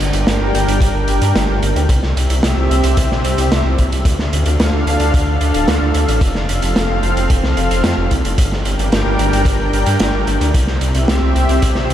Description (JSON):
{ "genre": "synthwave", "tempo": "111 BPM", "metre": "4/4", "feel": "straight", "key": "G dorian", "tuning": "A4 = 440 Hz", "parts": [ { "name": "lush unison pad", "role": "sustained chords", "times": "0.0-11.9 s", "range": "C3 to G5", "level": "-19 LUFS", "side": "equal", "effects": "chorus, sidechain pumping" }, { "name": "wide detuned saw bass", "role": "bass", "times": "0.0-11.9 s", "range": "D1 to G2", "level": "-17 LUFS", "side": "equal", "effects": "chorus, tube saturation, sidechain pumping" }, { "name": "raw garage drum kit", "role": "drums", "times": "0.0-11.9 s", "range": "hi-hat, snare drum", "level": "-20 LUFS", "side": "right 1 dB", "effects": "none" }, { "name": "kick drum", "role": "drums", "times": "0.8-11.7 s", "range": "none", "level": "-19 LUFS", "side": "equal", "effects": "none" } ], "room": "little or no reverb", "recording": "none", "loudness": "-13 LUFS", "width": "side -11 dB against mid", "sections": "0.0-11.9 A section", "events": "none", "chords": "0.0 Gm; 1.9 C; 4.1 Dm; 6.2 F; 8.4 Gm; 10.5 C", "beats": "0.27 0.81 1.35 | 1.89 2.43 2.97 3.52 | 4.05 4.60 5.14 5.68 | 6.22 6.76 7.30 7.84 | 8.38 8.92 9.46 10.00 | 10.54 11.08 11.62" }